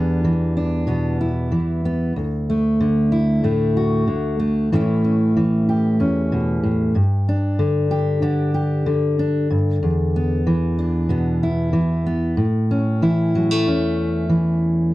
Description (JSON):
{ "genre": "folk", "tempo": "94 BPM", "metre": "4/4", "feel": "straight", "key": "unclear", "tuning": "A4 = 441 Hz", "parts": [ { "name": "fingerpicked steel-string acoustic guitar", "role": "solo", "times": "0.0-14.9 s", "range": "D2 to G4", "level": "-17 LUFS", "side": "equal", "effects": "slapback echo" } ], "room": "little or no reverb", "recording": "dry, close 1970s-style studio recording", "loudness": "-17 LUFS", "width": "side -17 dB against mid", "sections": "0.0-12.4 A section; 12.4-14.9 B section", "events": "none", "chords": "0.0 Em7; 2.2 D; 4.7 A; 7.0 G5; 9.8 E5; 12.4 A", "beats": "0.24 0.88 1.52 | 2.16 2.80 3.44 4.08 | 4.71 5.35 5.99 6.63 | 7.27 7.91 8.55 9.19 | 9.83 10.47 11.11 11.75 | 12.39 13.03 13.67 14.31" }